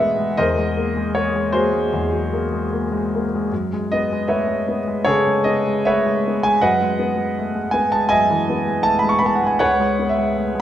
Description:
classical, impressionist solo piano; 78 BPM; 4/4; rubato; E major; A4 = 440 Hz
warm concert grand piano; solo; 0.0-10.6 s; C#2 to C#6; -17 LUFS; equal
wet recital hall reverb, RT60 1.4 s; -17 LUFS; side -11 dB against mid
0.0-10.6 A section
0.4 G#9/E; 3.5 F#m11; 9.6 C#m7
| 0.37 1.16 1.94 2.73 | 3.51 4.28 5.06 5.85 | 6.62 7.37 8.12 8.86 | 9.62 10.38

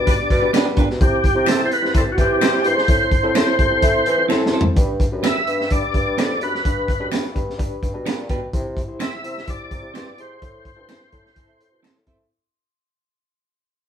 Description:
uptempo 1960s-style soul; 128 BPM; 4/4; straight; G major; A4 = 440 Hz
overdriven tonewheel organ; melody; 0.0-11.8 s; F#4 to E5; -21 LUFS; equal; chorus vibrato, slow rotary speaker
glockenspiel with rubber mallets; second line; 0.0-11.8 s; B5 to D7; -33 LUFS; left 4 dB
overdriven reed electric piano; accompaniment; 0.0-12.2 s; B3 to G5; -26 LUFS; left 2 dB; fast tremolo
warm bassoon; bass; 0.0-12.3 s; F2 to A3; -26 LUFS; equal
warm horn section; second line; 0.1-4.7, 10.9-11.7 s; E3 to C5; -28 LUFS; equal
crunchy breakbeat drum kit; drums; 0.1-12.2 s; hi-hat, kick drum, snare drum, toms; -20 LUFS; equal
clean electric guitar; stabs; 0.5-12.2 s; B3 to C5; -25 LUFS; right 5 dB
finger snap; percussion; 0.5-11.9 s; -30 LUFS; left 5 dB
moderate studio reverb, RT60 0.8 s; band playing live in one room; -16 LUFS; side -8 dB against mid
0.0-4.8 A section; 4.8-12.3 B section
drum fill 4.3-4.8; fade-out 4.8-12.3; band accent 10.4-12.3
0.0 G; 1.0 C; 2.9 Am; 4.8 G; 8.5 C; 10.4 Am
0.07 0.54 | 1.01 1.48 1.95 2.42 | 2.89 3.36 3.83 4.30 | 4.77 5.24 5.71 6.18 | 6.65 7.12 7.59 8.06 | 8.53 9.01 9.48 9.95 | 10.42 10.89 11.36 11.84

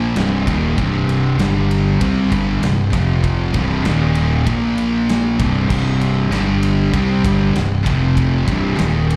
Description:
stoner and doom metal; 97 BPM; 4/4; straight; C minor; A4 = 440 Hz
raw garage guitar; riff; 0.0-9.2 s; C2 to C4; -28 LUFS; equal; overdrive, slapback echo
thick fuzz guitar; riff; 0.0-9.2 s; C2 to C4; -20 LUFS; equal; distortion
thick fuzz guitar; riff; 0.0-9.2 s; C2 to C4; -27 LUFS; equal
fuzz fingered electric bass; bass; 0.0-9.2 s; C1 to C2; -24 LUFS; equal; overdrive
big rock drum kit; drums; 0.2-9.2 s; crash cymbal, kick drum, ride cymbal, snare drum; -25 LUFS; equal
little or no reverb; live gig heard through the venue's PA, club reverb; -17 LUFS; mono
0.0-9.2 A section
0.2 Cm; 1.4 G5; 2.0 C5; 2.9 F5; 3.5 C5; 3.8 Eb5; 4.5 Bb5; 5.4 C5; 6.3 G5; 6.9 C5; 7.9 F5; 8.5 C5
0.16 | 0.77 1.39 2.00 2.62 | 3.23 3.85 4.46 5.08 | 5.70 6.32 6.93 7.55 | 8.17 8.78

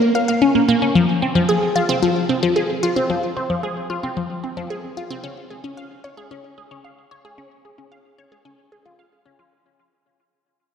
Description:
ambient; 112 BPM; 4/4; straight; A4 = 440 Hz
resonant blip pluck; solo; 0.1-9.5 s; F3 to F5; -17 LUFS; left 1 dB; phaser, tape echo
wet lush hall reverb, RT60 2.9 s; dark, warm production; -17 LUFS; side -7 dB against mid
0.0-9.5 A section
fade-out 0.0-9.5
0.42 | 0.95 1.49 2.02 2.56 | 3.10 3.63 4.17 4.70 | 5.24 5.77 6.31 6.84 | 7.38 7.92 8.45 8.99

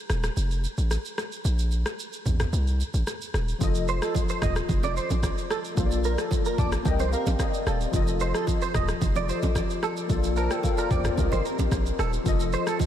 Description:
afrobeats; 111 BPM; 4/4; straight; F mixolydian; A4 = 440 Hz
hard-hitting 808-style bass; bass; 0.1-12.6 s; Eb1 to C2; -26 LUFS; equal
deep house drum kit; drums; 0.1-12.9 s; kick drum, rim click, shaker, toms; -28 LUFS; equal
tine electric piano; accompaniment; 3.6-12.9 s; F3 to A5; -29 LUFS; left 5 dB; ensemble chorus
congas and bongos; percussion; 3.6-12.9 s; -36 LUFS; right 6 dB
direct-recorded clean electric guitar; riff; 3.9-12.8 s; A4 to Eb5; -31 LUFS; right 7 dB; ensemble chorus, diffuse ambient delay
light reverb, digital ambience; -23 LUFS; side -10 dB against mid
0.0-12.3 A section
break 0.0-3.6; tine electric piano fill 6.3-7.9
0.0 F7; 1.4 N.C.; 2.5 Cm; 3.6 F7; 5.8 Bbmaj7; 6.9 Cm7; 7.9 F7; 10.1 Bbmaj7; 11.2 Cm7; 12.3 F7
0.37 0.91 | 1.45 1.99 2.53 3.07 | 3.61 4.15 4.69 5.23 | 5.77 6.31 6.85 7.39 | 7.93 8.47 9.02 9.56 | 10.10 10.64 11.18 11.72 | 12.26 12.80

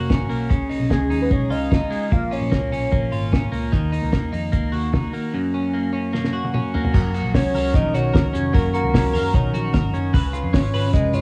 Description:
jangly indie pop; 149 BPM; 4/4; straight; F# major; A4 = 438 Hz
twelve-string electric guitar; arpeggios; 0.0-11.2 s; F#2 to B4; -25 LUFS; equal; cassette tape, analog delay
vintage muted picked electric bass; bass; 0.0-11.2 s; E#1 to F#2; -27 LUFS; equal
cloth-damped thuddy drum kit; drums; 0.1-11.2 s; crash cymbal, hi-hat, kick drum, snare drum, toms; -22 LUFS; equal
warbly nostalgic lead; melody; 0.9-3.5, 7.3-11.2 s; G#4 to E#5; -28 LUFS; equal; chorus
wet booth ambience, RT60 0.2 s; home recording on cassette, small room ambience; -21 LUFS; mono
0.0-6.9 A section; 6.9-11.2 B section
drum fill 6.1-6.9
0.0 F#; 0.5 C#add9; 2.1 A#m; 3.7 D#m; 5.3 F#; 6.9 F#6; 10.1 C#7
0.10 | 0.51 0.91 1.31 1.72 | 2.12 2.52 2.92 3.33 | 3.73 4.13 4.53 4.94 | 5.34 5.74 6.14 6.54 | 6.94 7.34 7.75 8.14 | 8.54 8.94 9.34 9.74 | 10.14 10.54 10.94

